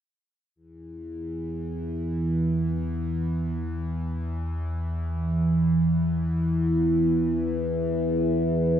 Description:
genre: ambient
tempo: free time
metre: none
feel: none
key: unclear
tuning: A4 = 439 Hz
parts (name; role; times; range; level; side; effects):
- overtone-sweeping drone; drone; 0.9-8.8 s; E2 to E3; -24 LUFS; equal; chorus, built-in reverb
room: wet cathedral reverb, RT60 5.2 s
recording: in a vast, echoing space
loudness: -24 LUFS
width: side -9 dB against mid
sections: 0.6-8.8 A section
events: none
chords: none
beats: free time

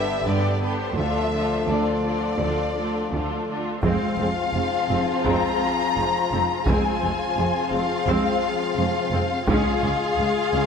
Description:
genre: cinematic, epic orchestral film score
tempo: 85 BPM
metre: 4/4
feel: straight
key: D dorian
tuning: A4 = 443 Hz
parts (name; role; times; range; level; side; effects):
- warm symphonic violin section; melody; 0.0-10.7 s; B4 to Bb5; -27 LUFS; left 4 dB; none
- warm symphonic violin section; second line; 0.0-10.7 s; C4 to G#4; -27 LUFS; left 3 dB; none
- rich symphonic viola section; accompaniment; 0.0-10.6 s; D3 to C#4; -29 LUFS; right 1 dB; none
- warm French horn section; sustained chords; 0.0-10.7 s; D3 to B4; -29 LUFS; left 4 dB; none
- rich symphonic cello section; bass; 0.0-10.6 s; C#2 to G2; -29 LUFS; right 3 dB; none
- rich symphonic double bass section; bass; 0.0-10.6 s; F1 to D2; -31 LUFS; right 3 dB; none
- taiko ensemble; drums; 3.8-10.1 s; none; -28 LUFS; equal; none
room: wet scoring stage reverb, RT60 2.0 s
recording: none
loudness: -20 LUFS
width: side -6 dB against mid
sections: 0.0-3.8 A section; 3.8-10.7 B section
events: none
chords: 0.0 G; 1.0 Dm; 3.8 Fm; 9.5 C#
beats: 0.25 | 0.96 1.67 2.39 3.12 | 3.83 4.54 5.25 5.96 | 6.67 7.37 8.07 8.78 | 9.47 10.18

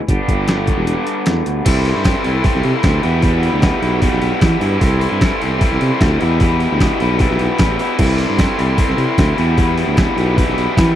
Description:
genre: indie rock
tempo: 152 BPM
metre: 4/4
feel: straight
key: C major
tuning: A4 = 440 Hz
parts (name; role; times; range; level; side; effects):
- raw garage guitar; riff; 0.0-11.0 s; E2 to G4; -18 LUFS; left 1 dB; overdrive
- mellow tuba; bass; 0.1-11.0 s; E1 to E3; -18 LUFS; equal; none
- boom bap sampler-style drum kit; drums; 0.1-10.9 s; crash cymbal, hi-hat, kick drum, snare drum; -16 LUFS; equal; overdrive
- overdriven combo organ; sustained chords; 1.7-11.0 s; G4 to C6; -26 LUFS; right 4 dB; none
room: little or no reverb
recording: dry, close 1970s-style studio recording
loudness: -13 LUFS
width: side -11 dB against mid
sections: 0.0-1.7 A section; 1.7-11.0 B section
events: none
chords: 0.1 G; 1.7 C6; 3.0 Em; 4.8 C6; 6.2 Em; 8.0 C6; 9.4 Em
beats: | 0.09 0.48 0.88 1.27 | 1.67 2.06 2.45 2.85 | 3.24 3.64 4.03 4.43 | 4.82 5.22 5.61 6.01 | 6.41 6.80 7.20 7.60 | 7.99 8.39 8.79 9.19 | 9.58 9.98 10.38 10.77

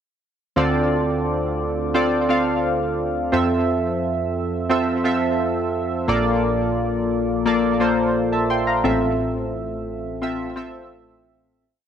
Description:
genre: pop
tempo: 87 BPM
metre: 4/4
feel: straight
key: F major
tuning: A4 = 439 Hz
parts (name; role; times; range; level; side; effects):
- chorused retro synth keys; solo; 0.6-11.6 s; A1 to C6; -19 LUFS; equal; tape echo
room: moderate lush hall reverb, RT60 1.7 s, digital ambience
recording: none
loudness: -19 LUFS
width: side -8 dB against mid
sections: 0.6-11.6 verse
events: fade-out 8.8-11.6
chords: 0.6 Dm7; 3.3 Fmaj7; 6.1 Bbmaj7; 8.8 Fmaj7/A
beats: | 0.57 1.26 1.95 2.64 | 3.33 4.02 4.71 5.40 | 6.08 6.78 7.46 8.15 | 8.84 9.53 10.22 10.91

